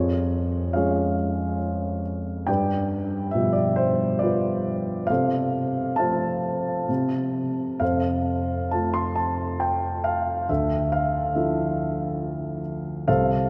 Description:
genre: classical, lyrical solo piano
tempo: 69 BPM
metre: 3/4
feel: rubato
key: F major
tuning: A4 = 440 Hz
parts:
  - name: dark concert grand piano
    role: solo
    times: 0.0-13.5 s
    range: C2 to C6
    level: -25 LUFS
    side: equal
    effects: none
room: wet cathedral reverb, RT60 6.1 s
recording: in a vast, echoing space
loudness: -25 LUFS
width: mono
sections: 0.0-13.5 A section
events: none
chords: 0.0 Db/F; 2.5 G7; 5.1 F/C; 6.9 N.C.; 7.8 F; 10.5 Dmadd9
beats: 0.75 1.62 | 2.48 3.34 4.21 | 5.09 5.99 6.89 | 7.82 8.73 9.62 | 10.49 11.36 12.21 | 13.08

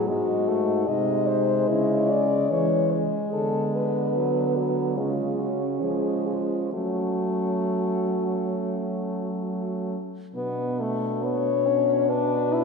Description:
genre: classical, lyrical piece for horn quartet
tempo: 64-75 BPM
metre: 4/4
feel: rubato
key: unclear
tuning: A4 = 440 Hz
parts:
  - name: mellow French horn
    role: melody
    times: 0.0-12.6 s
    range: E4 to D#5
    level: -26 LUFS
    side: left 7 dB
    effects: none
  - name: mellow French horn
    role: second line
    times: 0.0-12.6 s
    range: B3 to D#4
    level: -30 LUFS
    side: right 6 dB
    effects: none
  - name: warm French horn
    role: accompaniment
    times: 0.0-12.6 s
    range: F#3 to E4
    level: -28 LUFS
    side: left 1 dB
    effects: none
  - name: mellow French horn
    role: bass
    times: 0.0-12.6 s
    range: G#2 to F#3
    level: -29 LUFS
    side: right 3 dB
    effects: none
room: wet concert hall reverb, RT60 2.2 s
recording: minimal, uncompressed stereo recording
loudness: -22 LUFS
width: side -4 dB against mid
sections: 0.0-10.4 A section; 10.4-12.6 B section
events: none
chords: 0.1 G#7; 1.7 C#m; 3.3 Bm/D; 5.0 C#; 6.7 F#m; 10.4 Bm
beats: | 0.08 0.88 1.69 2.51 | 3.34 4.15 4.97 5.83 | 6.73 7.66 8.56 9.44 | 10.36 11.23 12.10

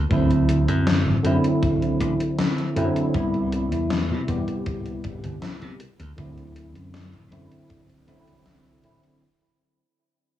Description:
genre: vaporwave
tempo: 79 BPM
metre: 4/4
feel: straight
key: unclear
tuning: A4 = 440 Hz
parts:
  - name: slap bass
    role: bass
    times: 0.0-9.0 s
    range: G1 to C3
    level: -25 LUFS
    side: equal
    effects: low-pass filter
  - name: bright tine electric piano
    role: accompaniment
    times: 0.1-9.2 s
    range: C3 to G4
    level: -23 LUFS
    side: right 1 dB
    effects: ensemble chorus, cassette tape, tape echo
  - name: gated 80s digital drum machine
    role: drums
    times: 0.1-9.2 s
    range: hi-hat, snare drum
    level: -28 LUFS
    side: left 2 dB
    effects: gated reverb, gated reverb snare, overdrive
  - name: kick drum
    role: drums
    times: 0.1-7.9 s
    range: none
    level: -30 LUFS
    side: left 1 dB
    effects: none
room: moderate studio ambience, RT60 0.5 s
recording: home recording on cassette, small room ambience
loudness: -20 LUFS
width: side -12 dB against mid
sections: 0.0-9.2 A section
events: fade-out 0.0-9.2; filter sweep on slap bass 0.0-9.2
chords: 0.0 D9; 3.1 Cmaj7; 5.8 D9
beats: | 0.10 0.86 1.62 2.38 | 3.14 3.90 4.66 5.42 | 6.18 6.94 7.70 8.46

